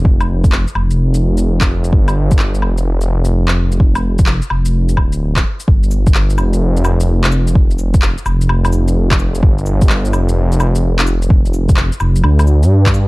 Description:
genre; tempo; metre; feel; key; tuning
future garage; 128 BPM; 4/4; swing 66% on 16ths; unclear; A4 = 440 Hz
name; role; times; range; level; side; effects
swelling detuned saw bass; bass; 0.0-13.1 s; D1 to G2; -13 LUFS; equal; sidechain pumping
electronic kick drum; drums; 0.1-12.9 s; none; -12 LUFS; equal; overdrive
electronic shaker, woodblock, handclaps and cabasa; drums; 0.2-13.1 s; none; -21 LUFS; left 1 dB; overdrive
room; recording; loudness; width
digital ambience; none; -11 LUFS; side -22 dB against mid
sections
0.0-5.7 A section; 5.7-13.1 B section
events
none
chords
none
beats
| 0.05 0.52 0.99 1.46 | 1.93 2.40 2.87 3.33 | 3.80 4.27 4.74 5.21 | 5.68 6.15 6.62 7.08 | 7.55 8.02 8.49 8.96 | 9.43 9.90 10.37 10.84 | 11.30 11.77 12.24 12.71

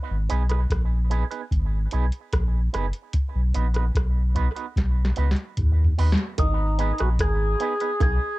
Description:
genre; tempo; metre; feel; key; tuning
dub reggae; 74 BPM; 4/4; straight; G# minor; A4 = 440 Hz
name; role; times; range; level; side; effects
warm sub bass; bass; 0.1-8.2 s; F#1 to D#2; -21 LUFS; equal; none
electric guitar with an envelope filter; accompaniment; 0.3-7.9 s; B3 to B4; -33 LUFS; right 9 dB; tremolo, tape echo
soft vintage rhythm box; drums; 0.3-8.2 s; hi-hat, kick drum, rim click, snare drum, toms; -26 LUFS; equal; cassette tape
percussive tonewheel organ; melody; 6.4-8.4 s; D#4 to G#4; -26 LUFS; equal; slow rotary speaker, tape echo
bongos; percussion; 6.4-8.2 s; none; -34 LUFS; right 13 dB; tape echo
room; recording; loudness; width
light reverb; home recording on cassette; -21 LUFS; side -18 dB against mid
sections
0.0-6.4 A section; 6.4-8.4 B section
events
drum fill 4.8-6.4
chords
0.0 G#m; 3.1 B; 6.4 G#m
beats
0.70 1.52 2.33 | 3.14 3.95 4.76 5.57 | 6.39 7.20 8.01

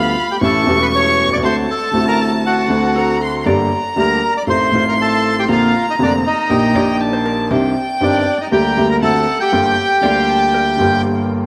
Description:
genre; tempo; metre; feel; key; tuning
tango; 119 BPM; 4/4; rubato; G minor; A4 = 439 Hz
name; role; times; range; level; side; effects
bandoneon; melody; 0.0-11.0 s; D4 to D6; -20 LUFS; equal; none
warm violin; second line; 0.0-11.3 s; F5 to C#6; -23 LUFS; equal; none
clear upright piano; accompaniment; 0.0-11.5 s; E1 to G4; -18 LUFS; equal; none
vintage hollow-body jazz guitar; second line; 3.0-11.5 s; A4 to D5; -30 LUFS; equal; none
room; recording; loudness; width
wet plate reverb, RT60 2.9 s; heard from further back in the room; -15 LUFS; mono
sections
0.0-11.5 A section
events
none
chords
0.4 A7; 1.4 D7; 3.5 Gm; 4.5 F7/A; 5.5 Bbadd9; 6.5 Ebmaj7/Bb; 7.5 Cmadd9; 8.5 Gm/D; 9.0 D7; 9.5 Gm7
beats
0.42 0.93 | 1.44 1.94 2.45 2.96 | 3.47 3.97 4.48 4.99 | 5.49 5.99 6.50 7.00 | 7.51 8.01 8.52 9.02 | 9.53 10.04 10.54 11.05

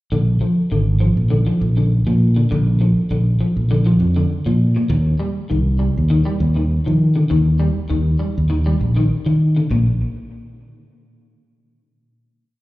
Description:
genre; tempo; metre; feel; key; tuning
afrobeat; 100 BPM; 4/4; swing 53% on 16ths; Bb mixolydian; A4 = 440 Hz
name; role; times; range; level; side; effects
electric guitar at the edge of break-up; arpeggios; 0.1-9.9 s; Bb2 to G3; -20 LUFS; left 1 dB; ensemble chorus, analog delay
fingered electric bass; bass; 0.1-10.0 s; Ab1 to Eb3; -16 LUFS; equal; none
room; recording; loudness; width
light reverb; live gig heard through the venue's PA, club reverb; -15 LUFS; side -18 dB against mid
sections
0.1-9.7 groove; 9.7-12.1 final chord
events
none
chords
0.1 Bb; 4.9 Eb; 9.7 N.C.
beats
| 0.13 0.72 1.32 1.92 | 2.51 3.11 3.71 4.31 | 4.91 5.50 6.10 6.70 | 7.30 7.90 8.50 9.10 | 9.70

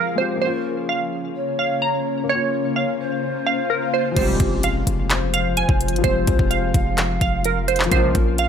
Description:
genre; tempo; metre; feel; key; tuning
hip hop, trap; 128 BPM; 4/4; half-time; F minor; A4 = 440 Hz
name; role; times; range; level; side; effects
glassy wavetable pluck; melody; 0.0-8.5 s; Bb4 to Bb5; -23 LUFS; right 5 dB; chorus
polished pan flute; second line; 0.0-8.4 s; G4 to F5; -28 LUFS; left 2 dB; ping-pong delay
dark baby grand piano; accompaniment; 0.0-8.5 s; F3 to Ab4; -28 LUFS; left 6 dB; none
ethereal airy pad; sustained chords; 0.0-8.5 s; Db3 to Bb4; -28 LUFS; left 3 dB; ensemble chorus, built-in reverb
downlifter, swell and impact; sound effects; 2.9-6.0 s; none; -32 LUFS; left 2 dB; none
chorused polysynth; stabs; 4.2-4.4, 7.9-8.1 s; C2 to G3; -28 LUFS; left 3 dB; none
hard-hitting 808-style bass; bass; 4.2-8.5 s; F1 to C2; -23 LUFS; equal; none
trap drum kit; drums; 4.2-8.5 s; crash cymbal, handclaps, hi-hat, kick drum; -21 LUFS; equal; overdrive
room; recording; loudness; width
light reverb, digital ambience; none; -18 LUFS; side -8 dB against mid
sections
0.0-4.2 A section; 4.2-8.5 B section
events
swell 2.9-4.2; impact 4.2-6.0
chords
0.4 Bbmadd9; 4.2 Fmadd9; 7.9 Bbmadd9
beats
| 0.42 0.88 1.35 1.82 | 2.29 2.76 3.23 3.70 | 4.17 4.63 5.10 5.57 | 6.04 6.51 6.98 7.45 | 7.92 8.38

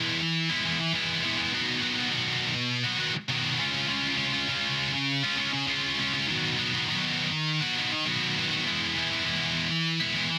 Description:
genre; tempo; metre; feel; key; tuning
rock; 101 BPM; 4/4; straight; B major; A4 = 438 Hz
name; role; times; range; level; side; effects
high-gain distorted guitar; solo; 0.0-10.4 s; B2 to F#4; -27 LUFS; equal; distortion
room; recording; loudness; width
light reverb; dense, heavily limited modern master, vinyl crackle; -27 LUFS; mono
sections
0.0-10.4 A section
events
none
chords
0.0 E; 1.5 B; 3.6 C#; 6.3 B/D#; 8.7 E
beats
0.35 0.94 | 1.54 2.13 2.72 3.32 | 3.91 4.50 5.10 5.69 | 6.28 6.88 7.47 8.06 | 8.66 9.25 9.84

